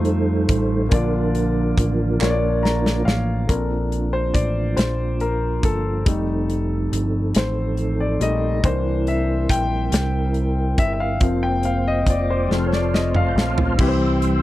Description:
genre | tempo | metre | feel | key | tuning
slow gospel | 47 BPM (dotted quarters) | 6/8 | straight | Bb major | A4 = 440 Hz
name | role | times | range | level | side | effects
warm grand piano | accompaniment | 0.0-14.4 s | D3 to Bb5 | -24 LUFS | left 4 dB | none
mellow tonewheel organ | sustained chords | 0.0-14.4 s | E3 to G6 | -24 LUFS | right 3 dB | slow rotary speaker, chorus vibrato
deep dub picked electric bass | bass | 0.0-14.4 s | F1 to F2 | -23 LUFS | equal | none
modern studio drum kit | drums | 0.0-14.4 s | crash cymbal, hi-hat, kick drum, snare drum, toms | -20 LUFS | equal | none
group handclap | percussion | 2.2-2.6 s | none | -28 LUFS | right 4 dB | none
room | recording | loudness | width
little or no reverb | dry, close 1970s-style studio recording | -18 LUFS | side -15 dB against mid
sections
0.0-3.5 A section; 3.5-13.8 B section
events
tonewheel organ solo 0.0-3.5; drum fill 2.2-3.5, 12.5-13.8; grand piano fill 2.2-3.5; grand piano solo 3.5-13.8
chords
0.0 F7; 0.9 Bb; 3.5 Bbmaj7; 6.1 F7; 8.6 C7; 11.2 Fsus4; 12.5 F; 13.8 C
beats
| 0.91 2.20 | 3.49 4.78 | 6.06 7.35 | 8.64 9.93 | 11.21 12.50 | 13.79

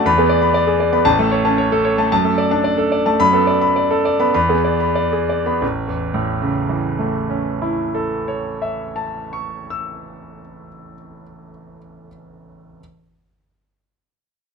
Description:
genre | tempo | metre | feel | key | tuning
classical, virtuoso piano study | 88-124 BPM | 4/4 | rubato | A major | A4 = 442 Hz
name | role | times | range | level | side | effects
bright concert grand piano | solo | 0.0-12.8 s | A1 to E6 | -16 LUFS | equal | none
room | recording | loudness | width
light reverb | faint mains hum | -16 LUFS | side -5 dB against mid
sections
0.0-5.6 A section; 5.6-10.6 B section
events
slowing down 0.1-5.6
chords
0.1 E7; 1.1 A; 2.1 D/F#; 3.2 Bm7/F#; 4.3 E7; 5.6 A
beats
0.06 0.55 | 1.06 1.58 2.11 2.64 | 3.19 3.75 4.33 4.95 | 5.61 6.24 6.86 7.49 | 8.12 8.73 9.36 9.99

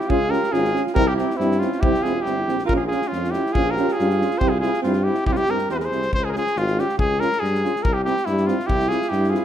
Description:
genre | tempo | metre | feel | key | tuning
balkan folk, Balkan brass band | 140 BPM | 2/4 | straight | C phrygian dominant | A4 = 438 Hz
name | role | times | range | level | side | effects
clear trumpet | melody | 0.0-9.4 s | E4 to C5 | -23 LUFS | left 1 dB | none
growling alto saxophone | second line | 0.0-6.1, 8.7-9.4 s | C4 to Ab4 | -26 LUFS | right 5 dB | none
natural country drum kit | percussion | 0.0-9.4 s | kick drum, snare drum | -27 LUFS | left 1 dB | none
clear French horn | accompaniment | 0.1-9.4 s | E4 to F4 | -30 LUFS | left 8 dB | none
mellow euphonium | accompaniment | 0.1-9.4 s | C4 to Db4 | -28 LUFS | right 5 dB | none
warm tuba | bass | 0.1-9.3 s | E1 to G2 | -25 LUFS | left 1 dB | none
room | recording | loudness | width
moderate recital hall reverb, RT60 1.4 s | minimal, uncompressed stereo recording | -18 LUFS | side -10 dB against mid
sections
0.0-6.1 A section; 6.1-9.4 A section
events
none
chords
0.0 Db; 1.0 C; 2.7 Bbm; 4.4 C; 6.1 Db; 7.8 C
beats
| 0.09 0.52 | 0.96 1.39 | 1.82 2.26 | 2.69 3.12 | 3.56 3.99 | 4.42 4.85 | 5.28 5.71 | 6.13 6.56 | 6.99 7.42 | 7.84 8.27 | 8.69 9.12

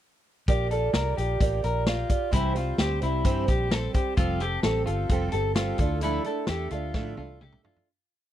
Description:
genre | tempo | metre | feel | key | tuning
jangly indie pop | 130 BPM | 4/4 | straight | unclear | A4 = 440 Hz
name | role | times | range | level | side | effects
fingerpicked twelve-string acoustic guitar | accompaniment | 0.5-7.9 s | C3 to D5 | -31 LUFS | right 8 dB | none
electric guitar at the edge of break-up | arpeggios | 0.5-7.9 s | E4 to Bb4 | -30 LUFS | left 3 dB | tape echo
vintage muted fingered electric bass | bass | 0.5-7.6 s | F1 to A2 | -29 LUFS | equal | none
vintage drum kit | drums | 0.5-7.9 s | hi-hat, kick drum, snare drum, toms | -26 LUFS | left 1 dB | none
room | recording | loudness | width
little or no reverb | dry, close 1970s-style studio recording | -24 LUFS | side -12 dB against mid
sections
0.5-7.9 pre-chorus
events
fade-out 6.0-7.9; drum fill 6.9-7.9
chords
0.5 Bb6; 2.3 C; 4.2 Fadd9; 5.8 Dmadd9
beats
| 0.48 0.94 1.41 1.87 | 2.33 2.79 3.25 3.72 | 4.18 4.64 5.10 5.56 | 6.03 6.49 6.95 7.41

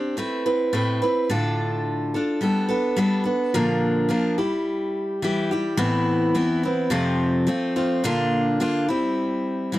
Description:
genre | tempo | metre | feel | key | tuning
rock | 107 BPM | 4/4 | straight | unclear | A4 = 440 Hz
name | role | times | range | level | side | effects
picked steel-string acoustic guitar | solo | 0.0-9.8 s | F2 to B4 | -20 LUFS | equal | none
room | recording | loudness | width
light reverb | dry, close 1970s-style studio recording | -20 LUFS | side -16 dB against mid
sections
0.0-3.6 A section; 3.6-9.8 B section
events
none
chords
0.2 Amadd9; 1.3 Dm/A; 2.4 Gadd9; 3.6 Bb; 4.4 Em; 5.8 Amadd9; 6.9 F; 8.0 Bb; 8.9 C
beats
0.18 0.74 | 1.31 1.87 2.43 2.99 | 3.55 4.11 4.67 5.24 | 5.80 6.36 6.92 7.48 | 8.05 8.61 9.17 9.74

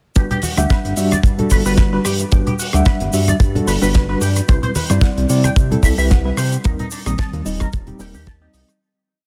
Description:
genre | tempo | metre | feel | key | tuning
nu-disco, nu disco | 111 BPM | 4/4 | swing 55% on 16ths | G major | A4 = 438 Hz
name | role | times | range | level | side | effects
mellow reed electric piano | accompaniment | 0.2-8.8 s | Eb3 to Eb6 | -23 LUFS | equal | fast tremolo
electric guitar with an envelope filter | riff | 0.2-8.6 s | D4 to G5 | -29 LUFS | equal | lush chorus, tape echo
chorused synth bass | bass | 0.2-8.6 s | Eb1 to C3 | -21 LUFS | equal | none
damped 70s drum kit | drums | 0.2-8.8 s | hi-hat, rim click, shaker, snare drum | -27 LUFS | equal | none
kick drum | drums | 0.2-8.4 s | none | -17 LUFS | equal | none
congas | percussion | 0.3-8.0 s | none | -27 LUFS | equal | none
room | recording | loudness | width
light reverb, small room ambience | dense, heavily limited modern master | -16 LUFS | mono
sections
0.2-8.8 drop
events
drop 0.2-8.8; fade-out 5.9-8.8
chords
0.2 Gmaj7; 4.5 Cmaj7; 6.6 Eb6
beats
| 0.16 0.70 1.24 1.78 | 2.32 2.86 3.40 3.94 | 4.48 5.02 5.56 6.11 | 6.64 7.19 7.73 8.27

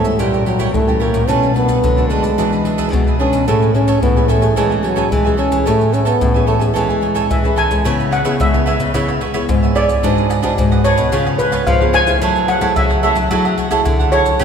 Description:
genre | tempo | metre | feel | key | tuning
samba and choro | 110 BPM | 4/4 | straight | unclear | A4 = 439 Hz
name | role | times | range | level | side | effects
breathy trombone | melody | 0.0-7.5 s | F#3 to C#4 | -18 LUFS | equal | none
cavaquinho | accompaniment | 0.0-14.4 s | D4 to G#5 | -21 LUFS | right 5 dB | none
nylon-string guitar | accompaniment | 0.0-14.4 s | G#2 to B4 | -21 LUFS | left 3 dB | none
nylon-string guitar | bass | 0.0-14.4 s | G#2 to G#3 | -20 LUFS | equal | none
maracas, surdo, pandeiro and tamborim | percussion | 0.0-14.4 s | none | -20 LUFS | equal | none
steel pan | second line | 7.3-14.4 s | B4 to G#5 | -18 LUFS | equal | none
room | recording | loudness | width
wet cathedral reverb, RT60 4.7 s | recorded in a church or concert hall | -13 LUFS | side -7 dB against mid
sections
0.0-7.9 A section; 7.9-14.4 B section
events
steel pan solo 7.9-14.4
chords
0.2 A#dim7; 1.3 Bm7; 2.4 E9; 3.5 Amaj9; 7.9 C#m7; 10.0 G#m7b5; 11.1 C#7; 12.2 F#m9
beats
0.19 0.74 | 1.29 1.84 2.38 2.93 | 3.48 4.03 4.57 5.12 | 5.67 6.21 6.76 7.31 | 7.85 8.40 8.95 9.49 | 10.04 10.58 11.13 11.67 | 12.22 12.76 13.31 13.86 | 14.40

